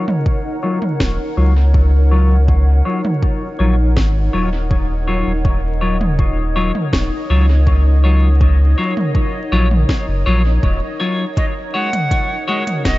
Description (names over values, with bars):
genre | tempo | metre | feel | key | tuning
ambient dub | 81 BPM | 4/4 | straight | Eb minor | A4 = 440 Hz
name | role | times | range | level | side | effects
granular cloud pad | sustained chords | 0.0-13.0 s | Eb4 to Gb5 | -26 LUFS | right 1 dB | built-in reverb
clean electric guitar | stabs | 0.0-12.6 s | Gb3 to Db5 | -22 LUFS | left 2 dB | low-pass filter, dub echo
bubbling stepped-filter texture | texture | 0.3-13.0 s | Eb4 to Eb5 | -30 LUFS | left 2 dB | chorus, built-in reverb
organic electronic drum kit | drums | 0.1-13.0 s | hi-hat, snare drum, toms | -22 LUFS | right 1 dB | overdrive, studio reverb, dub echo
electronic kick drum | drums | 0.3-13.0 s | none | -17 LUFS | equal | overdrive, studio reverb
warm sub bass | bass | 1.0-13.0 s | Eb1 to Db2 | -13 LUFS | equal | tube saturation
silver concert flute | melody | 11.4-13.0 s | Eb5 to Gb5 | -21 LUFS | right 1 dB | dub echo
room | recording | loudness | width
digital ambience | vinyl crackle, nothing above 7.7 kHz | -13 LUFS | side -18 dB against mid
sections
0.0-13.0 A section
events
filter sweep on clean electric guitar 0.0-13.0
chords
0.0 Ebm9; 11.4 Gbsus2/Eb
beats
0.26 1.00 1.74 | 2.48 3.23 3.96 4.71 | 5.45 6.19 6.93 7.67 | 8.41 9.15 9.89 10.63 | 11.37 12.11 12.85